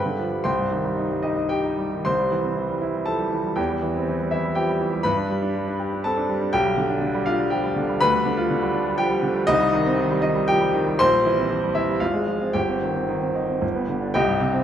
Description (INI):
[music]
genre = classical, virtuoso piano study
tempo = 105-123 BPM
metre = 3/4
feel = rubato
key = C major, C minor from 8.0 s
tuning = A4 = 439 Hz
[part]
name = clear grand piano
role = solo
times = 0.0-14.6 s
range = G1 to C6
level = -20 LUFS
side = equal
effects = none
[sound]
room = wet recital hall reverb, RT60 1.4 s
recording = none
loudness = -20 LUFS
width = side -9 dB against mid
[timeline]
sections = 0.0-2.1 A section; 2.1-14.2 B section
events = none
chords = 0.4 Cm; 2.1 C; 3.6 C/E; 5.1 G; 6.5 G/B; 8.0 G7/D; 9.5 Cm; 11.0 C7/Bb; 12.0 Fm/Ab; 12.5 Cm/G; 13.6 G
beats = | 0.44 0.97 1.51 | 2.06 2.57 3.07 | 3.58 4.07 4.56 | 5.05 5.55 6.04 | 6.53 7.02 7.51 | 8.01 8.49 8.98 | 9.48 9.97 10.47 | 11.00 11.50 12.01 | 12.54 13.09 13.62 | 14.15